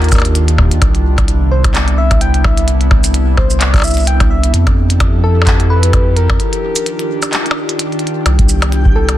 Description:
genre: IDM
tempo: 129 BPM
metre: 4/4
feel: swing 56% on 16ths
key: C major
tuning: A4 = 440 Hz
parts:
  - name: soft struck synth lead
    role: melody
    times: 0.0-9.2 s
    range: A4 to G5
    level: -21 LUFS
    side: left 1 dB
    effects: chorus, vintage 12-bit sampler grit, tape echo
  - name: warbly tape-like pad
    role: sustained chords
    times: 0.0-9.2 s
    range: C3 to A4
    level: -20 LUFS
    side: equal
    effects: chorus, built-in reverb, phaser
  - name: round analog bass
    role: bass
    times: 0.0-9.2 s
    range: C2 to F2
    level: -13 LUFS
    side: equal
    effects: none
  - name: glitchy drum kit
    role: drums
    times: 0.0-9.2 s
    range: handclaps, hi-hat, percussion blips, shaker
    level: -18 LUFS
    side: left 1 dB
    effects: none
  - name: electronic kick drum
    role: drums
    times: 0.1-8.9 s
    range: none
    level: -14 LUFS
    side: equal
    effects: none
  - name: flickering grainy texture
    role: texture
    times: 8.4-9.2 s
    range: G4 to G5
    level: -26 LUFS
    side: left 1 dB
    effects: built-in reverb
room: little or no reverb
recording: dense, heavily limited modern master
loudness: -10 LUFS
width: side -14 dB against mid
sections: 0.0-8.3 A section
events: break 6.4-8.3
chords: 0.0 Ebmaj9; 0.8 Cmaj9; 4.5 Fmaj9; 6.4 Ebmaj9; 8.3 Cmaj9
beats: 0.35 | 0.82 1.28 1.75 2.21 | 2.68 3.14 3.61 4.07 | 4.54 5.00 5.47 5.93 | 6.40 6.86 7.33 7.79 | 8.26 8.72

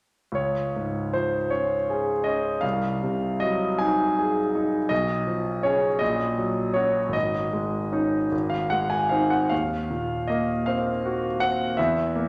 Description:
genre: classical, romantic character piece for solo piano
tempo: 53 BPM (dotted quarters)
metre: 6/8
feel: uneven beats, rubato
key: Db major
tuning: A4 = 440 Hz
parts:
  - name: clear concert grand piano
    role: solo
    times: 0.3-12.3 s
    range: Ab1 to Ab5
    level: -25 LUFS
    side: equal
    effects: none
room: wet recital hall reverb, RT60 1.4 s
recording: none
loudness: -25 LUFS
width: mono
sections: 0.4-12.3 A section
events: none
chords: 0.4 Db; 2.6 Ab7/C; 4.9 Db7/Cb; 6.0 Gb/Bb; 7.1 Absus4; 8.3 Ab; 9.5 Cm7b5/Eb; 11.8 E(b5, no3)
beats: | 0.37 1.52 | 2.63 3.81 | 4.91 6.01 | 7.15 8.32 | 9.51 10.66 | 11.78

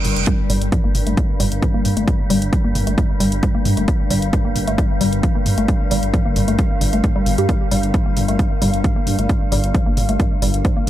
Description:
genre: driving peak-time techno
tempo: 133 BPM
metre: 4/4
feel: straight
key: G minor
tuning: A4 = 438 Hz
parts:
  - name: dark detuned saw bass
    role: bass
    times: 0.0-10.9 s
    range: F1 to G2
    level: -21 LUFS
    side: equal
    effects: sidechain pumping
  - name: swarming drone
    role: drone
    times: 0.0-10.9 s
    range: G2 to G3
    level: -26 LUFS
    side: left 2 dB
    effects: built-in reverb, sidechain pumping
  - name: punchy analog drum machine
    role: drums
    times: 0.0-10.9 s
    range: hi-hat, toms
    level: -26 LUFS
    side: equal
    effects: overdrive, sidechain pumping on toms, sidechain pumping on hats
  - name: warbly tape-like pad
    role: texture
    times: 0.0-10.9 s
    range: D4 to G5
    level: -28 LUFS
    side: left 1 dB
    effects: chorus, built-in reverb, sidechain pumping
  - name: woody wave-folded pluck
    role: riff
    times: 0.3-10.8 s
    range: F3 to G4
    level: -24 LUFS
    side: equal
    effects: analog chorus, vintage 12-bit sampler grit, sidechain pumping, analog delay
  - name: electronic kick drum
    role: drums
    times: 0.3-10.7 s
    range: none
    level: -18 LUFS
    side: equal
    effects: overdrive
room: light reverb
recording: dry, gritty hardware recording, transformer saturation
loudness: -15 LUFS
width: side -13 dB against mid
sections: 0.0-10.9 A section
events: none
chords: 0.0 Gm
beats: | 0.27 0.72 1.17 1.62 | 2.08 2.53 2.98 3.43 | 3.88 4.33 4.78 5.23 | 5.68 6.14 6.59 7.04 | 7.49 7.94 8.39 8.84 | 9.29 9.74 10.20 10.65

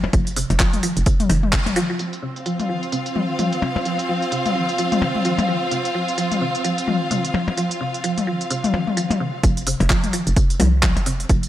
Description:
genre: minimal techno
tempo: 129 BPM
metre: 4/4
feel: swing 59% on 16ths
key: unclear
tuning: A4 = 442 Hz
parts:
  - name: hollow knocking FM bass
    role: bass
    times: 0.0-1.7, 9.4-11.5 s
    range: Eb1 to C2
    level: -21 LUFS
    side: equal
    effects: sidechain pumping
  - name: electronic percussion blips and toms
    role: percussion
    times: 0.0-11.0 s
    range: none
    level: -24 LUFS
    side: left 4 dB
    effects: tape echo
  - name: mallet-like synth pluck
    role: riff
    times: 0.1-11.4 s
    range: C3 to F3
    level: -25 LUFS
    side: equal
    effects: ensemble chorus, sidechain pumping, analog delay
  - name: electronic kick drum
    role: drums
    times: 0.1-1.6, 9.4-11.4 s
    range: none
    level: -19 LUFS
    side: equal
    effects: none
  - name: garage drum kit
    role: drums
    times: 0.1-11.5 s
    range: handclaps, hi-hat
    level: -26 LUFS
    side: right 1 dB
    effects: low-pass filter on hats, low-pass filter on snare, low-pass filter on room
  - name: rich chamber string section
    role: texture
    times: 2.0-9.4 s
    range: C4 to F5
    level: -23 LUFS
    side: right 1 dB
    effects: sidechain pumping
room: moderate lush hall reverb, RT60 1.9 s, digital ambience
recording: dry, gritty hardware recording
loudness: -18 LUFS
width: side -13 dB against mid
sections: 0.0-2.0 A section; 2.0-9.4 B section; 9.4-11.5 C section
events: band accent 1.5; filter sweep on synth arpeggio sound 2.0-9.4; drop 9.4-11.5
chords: 0.0 F5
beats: | 0.13 0.60 1.06 1.53 | 1.99 2.46 2.92 3.39 | 3.85 4.32 4.79 5.25 | 5.71 6.18 6.64 7.11 | 7.58 8.04 8.51 8.97 | 9.44 9.90 10.37 10.83 | 11.30

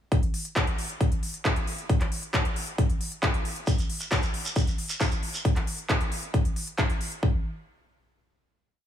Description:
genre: trance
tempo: 135 BPM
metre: 4/4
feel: straight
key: none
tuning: none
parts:
  - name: big-room dance drum kit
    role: drums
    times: 0.1-7.2 s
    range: handclaps, hi-hat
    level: -30 LUFS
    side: equal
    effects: overdrive, sidechain pumping on hats
  - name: electronic kick drum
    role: drums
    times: 0.1-7.3 s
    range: none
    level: -25 LUFS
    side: equal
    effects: overdrive
  - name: shekere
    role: percussion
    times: 3.7-5.4 s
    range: none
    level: -34 LUFS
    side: right 2 dB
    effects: none
room: little or no reverb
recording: faint mains hum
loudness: -25 LUFS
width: side -10 dB against mid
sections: 0.1-7.2 drop; 7.2-8.9 final hit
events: drop 0.1-7.2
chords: none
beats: | 0.12 0.56 1.01 1.45 | 1.90 2.34 2.78 3.23 | 3.67 4.12 4.56 5.01 | 5.45 5.89 6.34 6.78 | 7.23

